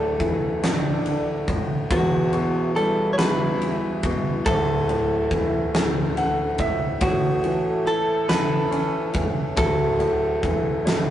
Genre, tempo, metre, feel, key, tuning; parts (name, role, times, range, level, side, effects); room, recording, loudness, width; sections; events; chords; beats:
six-eight pop ballad; 47 BPM (dotted quarters); 6/8; straight; D major; A4 = 442 Hz
direct-recorded clean electric guitar; melody; 0.0-11.1 s; F#4 to C#5; -25 LUFS; right 1 dB
mellow French horn section; second line; 0.0-11.1 s; D4 to A4; -30 LUFS; equal
clear concert grand piano; accompaniment; 0.0-11.1 s; D1 to F#5; -24 LUFS; left 1 dB
huge arena drum kit; drums; 0.2-11.1 s; kick drum, ride cymbal, snare drum; -25 LUFS; equal
moderate small room reverb, RT60 0.5 s; rough rehearsal-room recording, warm saturation, nothing above 10.5 kHz; -20 LUFS; side -11 dB against mid
0.0-11.1 A section
grand piano fill 5.7-7.0
0.0 Dsus2; 1.9 Emadd9; 4.5 Dsus2; 7.0 A6; 9.6 Dsus2
0.62 | 1.90 3.18 | 4.46 5.74 | 7.01 8.29 | 9.57 10.85